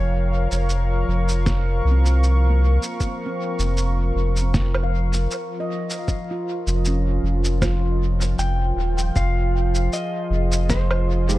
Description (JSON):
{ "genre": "ambient dub", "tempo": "78 BPM", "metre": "4/4", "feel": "swing 54% on 16ths", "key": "unclear", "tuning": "A4 = 442 Hz", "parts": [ { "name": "clean lap steel guitar", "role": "melody", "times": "0.0-1.4, 8.4-11.4 s", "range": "C5 to G5", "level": "-29 LUFS", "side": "left 2 dB", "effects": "dub echo" }, { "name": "warm analog pad", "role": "sustained chords", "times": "0.0-11.4 s", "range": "F3 to Db6", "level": "-27 LUFS", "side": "equal", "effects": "chorus" }, { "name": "warm sub bass", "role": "bass", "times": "0.0-11.4 s", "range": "Eb1 to C2", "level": "-19 LUFS", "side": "equal", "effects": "tube saturation" }, { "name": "electronic shaker, snare drum and woodblock", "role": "drums", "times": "0.5-11.4 s", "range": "none", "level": "-28 LUFS", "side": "right 1 dB", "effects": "dub echo" }, { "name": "electronic kick drum", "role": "drums", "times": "1.5-10.9 s", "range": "none", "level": "-24 LUFS", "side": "equal", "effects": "none" }, { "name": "handpan", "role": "arpeggios", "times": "1.9-10.2 s", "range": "Bb3 to F5", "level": "-31 LUFS", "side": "right 1 dB", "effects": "analog delay" }, { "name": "bright tine electric piano", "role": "stabs", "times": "11.3-11.4 s", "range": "Ab3 to G4", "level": "-24 LUFS", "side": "right 4 dB", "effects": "dub echo" } ], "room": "digital ambience", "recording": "echo-heavy mix", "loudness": "-19 LUFS", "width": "side -16 dB against mid", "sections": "0.0-9.2 A section; 9.2-11.4 B section", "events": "none", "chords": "0.0 Bbm/F; 9.2 Fm7", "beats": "0.69 1.46 2.23 | 3.00 3.77 4.54 5.31 | 6.08 6.85 7.62 8.39 | 9.16 9.93 10.70" }